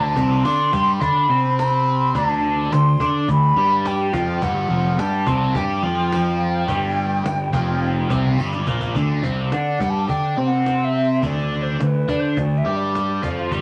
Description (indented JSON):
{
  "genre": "psychedelic rock",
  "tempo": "106 BPM",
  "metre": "4/4",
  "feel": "straight",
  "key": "unclear",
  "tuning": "A4 = 439 Hz",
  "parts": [
    { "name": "breathy hollow jazz flute", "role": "melody", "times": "0.0-13.3 s", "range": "B4 to C6", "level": "-24 LUFS", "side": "equal", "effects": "none" },
    { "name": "biting overdriven guitar", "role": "riff", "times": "0.0-13.6 s", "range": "F2 to D5", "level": "-24 LUFS", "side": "equal", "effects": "phaser" },
    { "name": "fuzz picked electric bass", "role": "bass", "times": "0.0-13.6 s", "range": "F1 to D3", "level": "-26 LUFS", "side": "equal", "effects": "overdrive" },
    { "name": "cajon", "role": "drums", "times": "0.2-13.6 s", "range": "none", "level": "-32 LUFS", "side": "equal", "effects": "none" },
    { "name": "tambourine", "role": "percussion", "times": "0.5-8.5 s", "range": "none", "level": "-50 LUFS", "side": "equal", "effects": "none" }
  ],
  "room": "wet studio reverb, RT60 0.7 s",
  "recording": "none",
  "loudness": "-20 LUFS",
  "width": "mono",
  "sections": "0.0-9.0 A section; 9.0-13.6 B section",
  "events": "drum fill 8.4-9.0; flute solo 9.0-13.6",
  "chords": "0.0 D5; 4.4 Fsus2; 9.0 Csus2",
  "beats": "0.45 1.02 1.58 | 2.15 2.72 3.28 3.85 | 4.42 4.99 5.55 6.12 | 6.69 7.26 7.82 8.39 | 8.96 9.53 10.10 10.67 | 11.24 11.81 12.38 12.95 | 13.52"
}